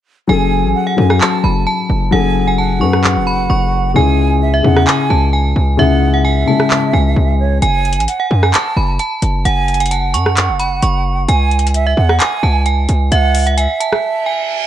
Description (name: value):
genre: hip hop, trap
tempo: 131 BPM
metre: 4/4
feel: half-time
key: F# minor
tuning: A4 = 439 Hz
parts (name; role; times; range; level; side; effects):
- metallic FM bell; melody; 0.3-14.7 s; E5 to C#6; -19 LUFS; right 2 dB; chorus, tape echo
- breathy concert flute; second line; 0.3-14.7 s; C#5 to A5; -20 LUFS; right 7 dB; tape echo
- dark baby grand piano; accompaniment; 0.3-7.6 s; C#3 to B4; -16 LUFS; left 6 dB; none
- distorted 808-style bass; bass; 0.3-13.7 s; F#1 to F#2; -14 LUFS; equal; distortion
- trap drum kit; drums; 1.1-14.0 s; handclaps, hi-hat, rim click; -17 LUFS; equal; none
- reverse cymbal; sound effects; 14.2-14.7 s; none; -22 LUFS; right 6 dB; none
room: little or no reverb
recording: dark, warm production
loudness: -11 LUFS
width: side -11 dB against mid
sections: 0.3-14.7 A section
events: hi-hats muted 0.3-7.6; break 14.0-14.7; reverse cymbal 14.2-14.7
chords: 0.3 F#madd9; 4.0 C#m; 7.6 F#madd9; 11.3 C#m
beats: | 0.29 0.75 1.21 1.67 | 2.12 2.58 3.04 3.50 | 3.96 4.42 4.87 5.33 | 5.79 6.25 6.71 7.16 | 7.62 8.08 8.54 8.99 | 9.45 9.91 10.37 10.83 | 11.29 11.74 12.20 12.66 | 13.12 13.57 14.03 14.49